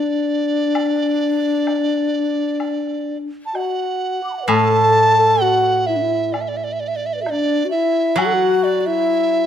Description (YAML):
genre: chinese traditional, Chinese chamber ensemble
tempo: 65 BPM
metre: 4/4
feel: rubato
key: D gong mode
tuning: A4 = 440 Hz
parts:
  - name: mellow hollow large dizi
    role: melody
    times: 0.0-9.5 s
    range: D5 to A5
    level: -19 LUFS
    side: right 3 dB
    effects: none
  - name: breathy mellow xiao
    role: second line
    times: 0.0-9.5 s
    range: D4 to D6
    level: -19 LUFS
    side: left 4 dB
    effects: none
  - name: woodblock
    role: percussion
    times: 0.8-8.4 s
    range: none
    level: -29 LUFS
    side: left 3 dB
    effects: none
  - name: steel-string zither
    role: accompaniment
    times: 4.5-9.5 s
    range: A2 to F#3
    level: -22 LUFS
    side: right 1 dB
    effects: none
room: light reverb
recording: close, detailed microphones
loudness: -16 LUFS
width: side -9 dB against mid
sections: 0.0-4.5 A section; 4.5-9.5 B section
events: none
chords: none